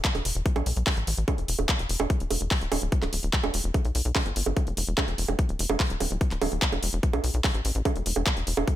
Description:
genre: psychedelic trance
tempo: 146 BPM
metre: 4/4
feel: straight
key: E minor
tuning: A4 = 440 Hz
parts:
  - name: drum and bass drum kit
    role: drums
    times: 0.0-8.8 s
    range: bongos, handclaps, hi-hat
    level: -28 LUFS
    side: right 3 dB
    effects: overdrive, small room ambience
  - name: electronic kick drum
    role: drums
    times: 0.0-8.8 s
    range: none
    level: -26 LUFS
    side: left 1 dB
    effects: small room ambience
  - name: tight sequencer bass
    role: bass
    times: 0.1-8.6 s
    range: D1 to B1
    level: -28 LUFS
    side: left 1 dB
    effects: none
room: little or no reverb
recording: none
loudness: -24 LUFS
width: side -13 dB against mid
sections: 0.0-8.8 A section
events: none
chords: none

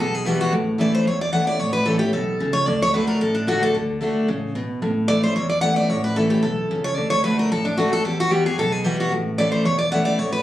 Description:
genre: bluegrass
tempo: 224 BPM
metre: 4/4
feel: swing 53% on 8ths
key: unclear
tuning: A4 = 440 Hz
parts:
  - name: picked steel-string acoustic guitar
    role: melody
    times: 0.0-10.4 s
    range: D4 to F#5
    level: -22 LUFS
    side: equal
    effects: none
  - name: picked steel-string acoustic guitar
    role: accompaniment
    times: 0.0-10.4 s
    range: E2 to F#4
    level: -21 LUFS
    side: left 1 dB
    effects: none
  - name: upright bass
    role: bass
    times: 0.0-10.4 s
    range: E1 to E2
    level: -29 LUFS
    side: right 1 dB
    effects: none
room: light reverb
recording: recorded on a phone in the room, club reverb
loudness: -18 LUFS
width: side -13 dB against mid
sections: 0.0-4.8 A section; 4.8-10.4 A section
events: none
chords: 0.0 Emadd9; 0.5 A; 2.7 D; 4.8 A; 7.0 D; 8.0 Emadd9; 9.1 A

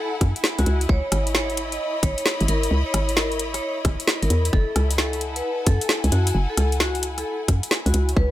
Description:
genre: UK garage, two-step garage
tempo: 132 BPM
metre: 4/4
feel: swing 65% on 16ths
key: F# dorian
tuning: A4 = 437 Hz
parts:
  - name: vibraphone with medium mallets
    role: melody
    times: 0.0-8.3 s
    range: F#4 to D#5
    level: -28 LUFS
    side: left 1 dB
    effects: ping-pong delay
  - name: rich studio string section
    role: texture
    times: 0.0-8.3 s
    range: E4 to B5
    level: -30 LUFS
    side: left 1 dB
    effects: sidechain pumping
  - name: hollow knocking FM bass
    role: bass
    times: 0.2-8.3 s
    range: F#1 to F#2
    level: -22 LUFS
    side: equal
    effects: sidechain pumping
  - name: electronic kick drum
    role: drums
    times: 0.2-8.3 s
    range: none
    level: -20 LUFS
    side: equal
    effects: small room reverb
  - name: garage drum kit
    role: drums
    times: 0.2-8.2 s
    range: hi-hat, rim click, snare drum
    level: -23 LUFS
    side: equal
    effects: small room reverb
room: little or no reverb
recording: none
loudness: -19 LUFS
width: side -14 dB against mid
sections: 0.0-8.3 A section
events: none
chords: 0.0 F#m9; 0.7 C#m9; 4.5 F#m9

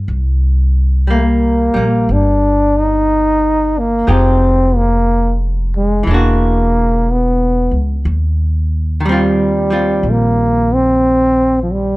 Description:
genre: jazz ballad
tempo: 60 BPM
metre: 4/4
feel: swing 66% on 8ths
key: Eb major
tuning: A4 = 440 Hz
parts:
  - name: archtop guitar, miked and amplified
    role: accompaniment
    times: 0.0-12.0 s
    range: Eb3 to G4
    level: -19 LUFS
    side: equal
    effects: none
  - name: upright bass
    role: bass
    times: 0.0-12.0 s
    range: E1 to Eb2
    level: -15 LUFS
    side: equal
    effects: none
  - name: breathy trombone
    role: melody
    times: 1.1-12.0 s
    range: F3 to Eb4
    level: -14 LUFS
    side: equal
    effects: plate reverb
room: light reverb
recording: dark, warm production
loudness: -11 LUFS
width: side -20 dB against mid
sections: 0.0-12.0 A section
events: none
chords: 0.1 Cm7; 4.1 Fm9; 6.1 E9; 8.0 Eb69

